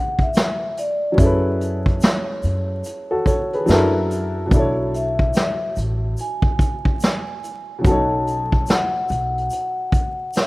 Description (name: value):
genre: lo-fi hip hop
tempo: 72 BPM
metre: 4/4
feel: swing 64% on 16ths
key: B dorian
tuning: A4 = 440 Hz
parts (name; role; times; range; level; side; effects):
- vibraphone with soft mallets; melody; 0.0-10.5 s; C#5 to A5; -25 LUFS; left 1 dB; none
- warm upright piano; accompaniment; 0.0-10.5 s; B2 to D5; -22 LUFS; left 1 dB; cassette tape
- vintage brush drum kit; drums; 0.2-10.5 s; hi-hat, kick drum, snare drum; -19 LUFS; equal; none
- tube shaker; percussion; 0.3-10.5 s; none; -43 LUFS; left 1 dB; none
- upright bass; bass; 1.2-9.5 s; A1 to F#2; -23 LUFS; equal; none
room: little or no reverb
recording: rough home demo mix, vinyl crackle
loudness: -17 LUFS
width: side -21 dB against mid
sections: 0.0-10.5 A section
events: none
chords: 0.0 E9; 1.2 F#m11; 3.7 F#7alt; 4.5 Bm11; 7.8 B9